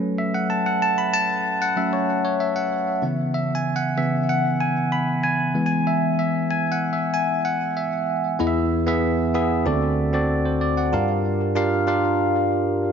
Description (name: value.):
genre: pop.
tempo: 95 BPM.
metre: 4/4.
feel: straight.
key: unclear.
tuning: A4 = 441 Hz.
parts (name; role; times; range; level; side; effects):
bell-like tine electric piano; solo; 0.0-12.9 s; D2 to B5; -20 LUFS; equal; phaser, tape echo.
room: moderate lush hall reverb, RT60 2.6 s.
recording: nothing above 7.4 kHz.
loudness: -20 LUFS.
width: side -7 dB against mid.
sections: 0.0-8.4 A section; 8.4-10.9 B section; 10.9-12.9 C section.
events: tine electric piano solo 0.0-8.4.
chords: 0.0 F#m; 3.0 C#m7; 5.6 E; 9.7 D7; 10.9 Gm7.